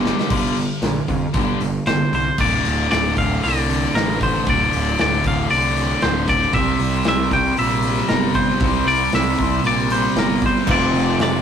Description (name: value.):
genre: quiet-loud alternative rock.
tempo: 116 BPM.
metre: 4/4.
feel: straight.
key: D minor.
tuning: A4 = 440 Hz.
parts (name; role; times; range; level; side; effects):
crunchy overdriven guitar; riff; 0.0-11.4 s; D2 to C4; -24 LUFS; right 7 dB; none.
overdriven electric guitar; riff; 0.0-11.4 s; D2 to C4; -24 LUFS; left 6 dB; none.
fuzz picked electric bass; bass; 0.0-11.4 s; D1 to F2; -23 LUFS; equal; overdrive.
big rock drum kit; drums; 0.1-11.3 s; crash cymbal, hi-hat, kick drum, snare drum; -23 LUFS; equal; none.
twangy electric guitar; melody; 1.9-11.4 s; Bb4 to G5; -21 LUFS; left 2 dB; none.
crunchy overdriven guitar; riff; 10.7-11.4 s; F2 to F3; -20 LUFS; left 1 dB; none.
room: moderate stone room reverb, RT60 1.0 s.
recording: rough rehearsal-room recording, tube saturation.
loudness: -16 LUFS.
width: side -8 dB against mid.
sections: 0.3-2.4 A section; 2.4-11.4 B section.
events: drum fill 0.0-0.3.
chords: 0.3 G5; 2.4 D5; 6.5 C; 10.7 F5.